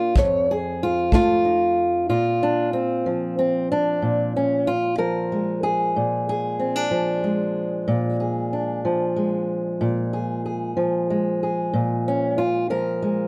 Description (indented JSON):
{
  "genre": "acoustic country blues, solo or duo",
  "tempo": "62 BPM (dotted quarters)",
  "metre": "12/8",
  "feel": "straight",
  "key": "Bb mixolydian",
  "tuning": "A4 = 440 Hz",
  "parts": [
    { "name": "fingerpicked old ladder-braced acoustic guitar", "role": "melody", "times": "0.0-13.3 s", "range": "F2 to Db5", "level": "-23 LUFS", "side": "equal", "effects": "plate reverb" },
    { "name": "kick drum", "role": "drums", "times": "0.2-1.3 s", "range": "none", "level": "-23 LUFS", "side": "equal", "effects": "none" }
  ],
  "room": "moderate booth ambience, RT60 0.2 s",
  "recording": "dark, warm production",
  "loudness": "-23 LUFS",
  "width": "mono",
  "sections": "0.0-2.1 A section; 2.1-13.3 B section",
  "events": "steel-string acoustic guitar solo 0.0-2.1",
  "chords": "0.2 F7; 2.1 Bb7"
}